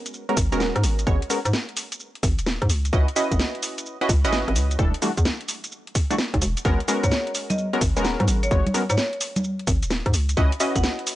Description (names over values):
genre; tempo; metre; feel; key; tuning
UK garage, two-step garage; 129 BPM; 4/4; swing 66% on 16ths; G# minor; A4 = 442 Hz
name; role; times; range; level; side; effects
punchy chord stab; stabs; 0.0-11.2 s; E3 to D#5; -26 LUFS; equal; chorus, analog delay
garage drum kit; drums; 0.1-11.2 s; congas, hi-hat, rim click, shaker, snare drum; -26 LUFS; equal; none
hollow knocking FM bass; bass; 0.4-10.8 s; D#1 to G#2; -23 LUFS; equal; none
electronic kick drum; drums; 0.4-10.8 s; none; -22 LUFS; equal; none
marimba with hard mallets; melody; 7.0-10.9 s; C#5 to F#5; -29 LUFS; equal; analog delay
room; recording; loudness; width
little or no reverb; dry, gritty hardware recording, nothing above 10.5 kHz; -20 LUFS; side -15 dB against mid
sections
0.0-11.2 A section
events
none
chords
0.0 G#m11; 2.7 C#m11; 4.8 Em11; 6.6 G#m11; 10.1 C#m11